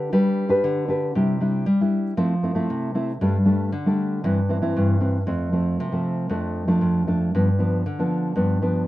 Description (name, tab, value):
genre	samba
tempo	117 BPM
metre	4/4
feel	straight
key	C major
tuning	A4 = 441 Hz
part	nylon-string guitar	solo	0.0-8.9 s	F2 to B4	-20 LUFS	equal	none
room	moderate studio reverb, RT60 0.9 s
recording	worn, warbling old tape, cassette tape, warbly pitch drift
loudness	-20 LUFS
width	side -16 dB against mid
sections	0.0-1.2 A section; 1.2-8.9 B section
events	none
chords	0.0 G; 1.2 Cadd9; 2.2 Fmaj7; 3.2 Gsus2; 4.2 C/G; 5.3 F; 6.3 Dm/F; 7.3 G7